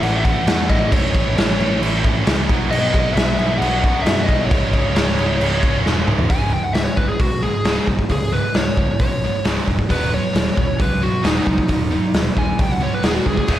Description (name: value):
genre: hard rock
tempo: 134 BPM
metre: 4/4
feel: straight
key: C# minor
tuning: A4 = 440 Hz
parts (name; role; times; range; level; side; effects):
- biting lead guitar; melody; 0.0-13.6 s; D#4 to G#5; -23 LUFS; equal; overdrive, slapback echo
- scooped high-gain guitar; riff; 0.0-13.6 s; C#2 to B3; -23 LUFS; right 1 dB; distortion, slapback echo
- picked electric bass; bass; 0.0-13.6 s; C#1 to F#2; -23 LUFS; equal; none
- raw garage drum kit; drums; 0.0-13.6 s; crash cymbal, hi-hat, kick drum, snare drum, toms; -18 LUFS; equal; none
room: light reverb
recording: none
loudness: -15 LUFS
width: side -12 dB against mid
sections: 0.0-6.3 A section; 6.3-13.6 B section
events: drum fill 5.9-6.3; lead electric guitar solo 6.3-13.6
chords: 0.0 A; 2.5 B; 4.5 C#5; 9.9 B/D#